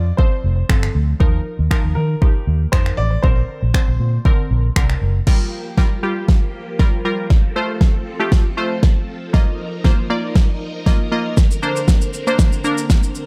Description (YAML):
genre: dance-pop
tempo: 118 BPM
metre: 4/4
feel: straight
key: unclear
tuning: A4 = 439 Hz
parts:
  - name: clear grand piano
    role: melody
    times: 0.0-4.7 s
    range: Bb4 to D5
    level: -30 LUFS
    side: equal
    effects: digital delay
  - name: wavetable chord stab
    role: accompaniment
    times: 0.0-13.3 s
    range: D3 to Eb5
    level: -26 LUFS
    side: equal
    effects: sidechain pumping
  - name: vintage muted fingered electric bass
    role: bass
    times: 0.0-5.2 s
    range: F1 to Eb3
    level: -20 LUFS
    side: equal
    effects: sidechain pumping
  - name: deep house drum kit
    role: drums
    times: 0.2-13.3 s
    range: crash cymbal, finger snaps, kick drum, shaker, snare drum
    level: -17 LUFS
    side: equal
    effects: none
  - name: phased string machine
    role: sustained chords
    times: 5.3-13.3 s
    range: D3 to Bb4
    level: -32 LUFS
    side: equal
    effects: ensemble chorus, phaser, sidechain pumping
room: digital ambience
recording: none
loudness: -17 LUFS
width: mono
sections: 0.0-5.3 A section; 5.3-13.3 B section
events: build-up 5.3-13.3; drum fill 5.3-13.3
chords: 0.0 F; 1.2 Ebsus2; 3.2 Bbadd9; 5.3 Gm7; 7.3 F; 9.3 Ebsus2; 11.4 Bbadd9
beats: 0.19 0.69 | 1.20 1.71 2.22 2.73 | 3.24 3.75 4.25 4.76 | 5.27 5.78 6.29 6.80 | 7.30 7.81 8.32 8.83 | 9.34 9.85 10.36 10.86 | 11.37 11.88 12.39 12.90